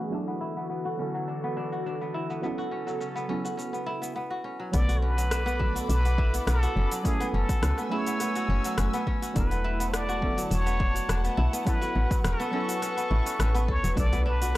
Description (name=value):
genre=organic downtempo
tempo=104 BPM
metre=4/4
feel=swing 54% on 16ths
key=B dorian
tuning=A4 = 440 Hz
part: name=deep mellow chord stab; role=accompaniment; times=0.0-14.6 s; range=D3 to A4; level=-36 LUFS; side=right 2 dB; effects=chorus, sidechain pumping, analog delay
part: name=airy breathy pad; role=sustained chords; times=0.0-14.6 s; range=C#3 to E6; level=-35 LUFS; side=right 1 dB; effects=chorus, sidechain pumping
part: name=kora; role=arpeggios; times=0.0-14.6 s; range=F#3 to A4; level=-33 LUFS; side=left 1 dB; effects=analog delay
part: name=deep house drum kit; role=drums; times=0.0-14.6 s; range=cabasa, hi-hat, rim click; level=-35 LUFS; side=equal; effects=overdrive
part: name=trumpet with plunger mute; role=melody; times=4.7-14.6 s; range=G#4 to D5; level=-32 LUFS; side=equal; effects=tape echo
part: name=woody FM bass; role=bass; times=4.7-14.6 s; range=E1 to C#2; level=-26 LUFS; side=equal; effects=none
part: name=electronic kick drum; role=drums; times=4.7-14.1 s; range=none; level=-28 LUFS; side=equal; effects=overdrive
part: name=djembe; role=percussion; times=14.1-14.5 s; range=none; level=-35 LUFS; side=right 1 dB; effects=none
room=little or no reverb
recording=dry, gritty hardware recording, low-pass filter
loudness=-25 LUFS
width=side -16 dB against mid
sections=0.0-4.7 A section; 4.7-14.6 B section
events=filter sweep on drum 0.0-4.7; filter sweep on kora 0.0-4.7; filter sweep 0.0-4.7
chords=0.1 E9sus4; 2.4 A69; 4.7 Bm7; 7.0 F#m9; 9.4 E9sus4; 14.0 Bm7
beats=| 0.13 0.70 1.28 1.86 | 2.43 3.01 3.59 4.17 | 4.74 5.32 5.90 6.47 | 7.05 7.63 8.20 8.78 | 9.36 9.93 10.51 11.09 | 11.66 12.24 12.82 13.40 | 13.97 14.55